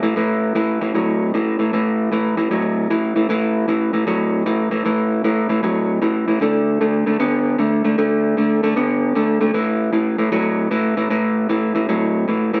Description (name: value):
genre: blues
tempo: 154 BPM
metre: 4/4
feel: swing 65% on 8ths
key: unclear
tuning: A4 = 440 Hz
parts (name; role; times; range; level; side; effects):
- electric guitar through a small old amp; solo; 0.0-12.6 s; A2 to B3; -19 LUFS; equal; spring reverb
room: moderate studio reverb, RT60 0.7 s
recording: band playing live in one room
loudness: -19 LUFS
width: mono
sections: 0.2-12.6 A section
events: none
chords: 0.2 A5; 6.4 D5; 9.5 A5